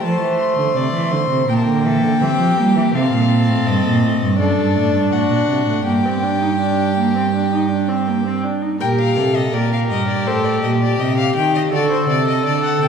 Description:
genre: classical, baroque-style fugue for string quartet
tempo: 82 BPM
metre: 4/4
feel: straight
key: G minor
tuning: A4 = 439 Hz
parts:
  - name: rich violin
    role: melody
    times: 0.0-12.9 s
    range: C5 to C6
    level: -23 LUFS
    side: left 4 dB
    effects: none
  - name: warm violin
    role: second line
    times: 0.0-12.9 s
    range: F#4 to D5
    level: -25 LUFS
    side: equal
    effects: none
  - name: rich viola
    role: accompaniment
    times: 0.0-12.9 s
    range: A3 to Bb4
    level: -20 LUFS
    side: equal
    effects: none
  - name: rich cello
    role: bass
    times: 0.0-12.9 s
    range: F#2 to G3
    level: -18 LUFS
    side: right 3 dB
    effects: none
room: wet scoring stage reverb, RT60 1.7 s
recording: heard from further back in the room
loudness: -15 LUFS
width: side -6 dB against mid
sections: 0.0-8.8 A section; 8.8-12.9 B section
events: none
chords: 0.0 F (rootless); 1.5 Edim/Bb; 2.9 Am7b5; 4.4 D7/F#; 5.9 Gm; 8.8 Gm/Bb; 10.3 Am7b5; 11.7 D7

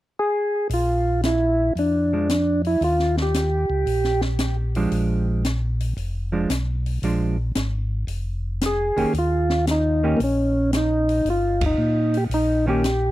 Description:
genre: soul jazz organ trio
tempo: 114 BPM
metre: 4/4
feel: swing 68% on 8ths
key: Bb mixolydian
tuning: A4 = 439 Hz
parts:
  - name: percussive tonewheel organ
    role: melody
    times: 0.2-4.2, 8.7-13.1 s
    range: Bb3 to Ab4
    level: -21 LUFS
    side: equal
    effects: slow rotary speaker, tape echo
  - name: mellow tonewheel organ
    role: bass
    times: 0.7-13.1 s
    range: F1 to Bb2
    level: -24 LUFS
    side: equal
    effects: slow rotary speaker
  - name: open jazz drum kit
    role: drums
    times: 0.7-13.0 s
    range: hi-hat, kick drum, ride cymbal, snare drum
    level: -28 LUFS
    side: left 1 dB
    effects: none
  - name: hollow-body jazz guitar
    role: accompaniment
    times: 2.1-12.8 s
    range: Eb3 to G4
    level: -24 LUFS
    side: right 2 dB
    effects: none
room: small room ambience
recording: dry, close 1970s-style studio recording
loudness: -19 LUFS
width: side -15 dB against mid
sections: 0.7-13.1 A section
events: band accent 11.5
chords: 0.0 N.C.; 0.7 Bb; 2.8 Eb7; 4.9 Bb7; 9.1 Eb

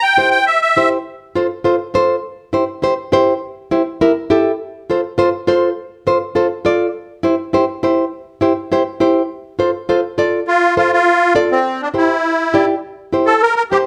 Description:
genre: latin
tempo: 204 BPM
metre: 4/4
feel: straight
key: F major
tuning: A4 = 440 Hz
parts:
  - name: musette accordion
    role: melody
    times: 0.0-0.9, 10.5-13.8 s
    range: C4 to G5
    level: -15 LUFS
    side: equal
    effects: none
  - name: nylon-string guitar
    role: accompaniment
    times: 0.2-13.9 s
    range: E4 to D5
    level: -17 LUFS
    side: equal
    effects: none
room: moderate large studio reverb, RT60 1.1 s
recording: none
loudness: -16 LUFS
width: mono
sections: 0.0-1.1 A section; 1.1-10.5 B section; 10.5-13.9 C section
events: none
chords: 0.0 C; 1.1 F; 2.2 C; 4.6 F; 7.0 C; 9.3 F; 11.7 C

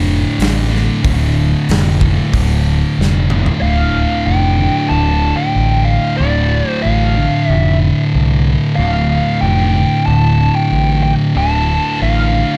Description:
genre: stoner and doom metal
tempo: 93 BPM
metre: 4/4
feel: straight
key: D minor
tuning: A4 = 440 Hz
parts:
  - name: thick fuzz guitar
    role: riff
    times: 0.0-12.6 s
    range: D2 to D3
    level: -20 LUFS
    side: equal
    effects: distortion
  - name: thick fuzz guitar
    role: riff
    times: 0.0-12.6 s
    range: D2 to D3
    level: -22 LUFS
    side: equal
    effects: distortion
  - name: overdriven fingered electric bass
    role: bass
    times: 0.0-12.4 s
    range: D1 to C2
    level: -18 LUFS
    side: equal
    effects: none
  - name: big rock drum kit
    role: drums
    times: 0.4-3.6 s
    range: hi-hat, kick drum, snare drum, toms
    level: -22 LUFS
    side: equal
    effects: none
  - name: fuzz lead guitar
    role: melody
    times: 3.6-12.6 s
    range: D5 to A5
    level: -21 LUFS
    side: equal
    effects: wah, distortion, digital delay
room: little or no reverb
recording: dark, warm production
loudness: -14 LUFS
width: mono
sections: 0.0-3.6 A section; 3.6-12.6 B section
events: drum fill 3.0-3.6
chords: 0.0 Dm

